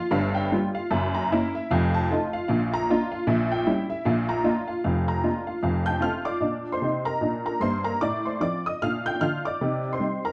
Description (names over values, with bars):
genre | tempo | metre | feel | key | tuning
jazz, stride piano | 152 BPM | 4/4 | swing 60% on 8ths | Bb major | A4 = 440 Hz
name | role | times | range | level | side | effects
honky-tonk upright piano | solo | 0.0-10.3 s | F1 to G6 | -25 LUFS | equal | none
room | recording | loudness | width
moderate studio reverb, RT60 0.9 s | dark, warm production | -25 LUFS | mono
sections
0.0-6.4 A section; 6.4-10.3 B section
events
none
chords
0.1 Gm7; 0.9 Gb7; 1.7 F7; 2.5 Bb; 3.3 Bbdim7; 4.1 Bb; 4.9 Bb/F; 5.6 F; 6.4 Bb; 8.0 F/A; 8.8 Bb; 9.6 Cm7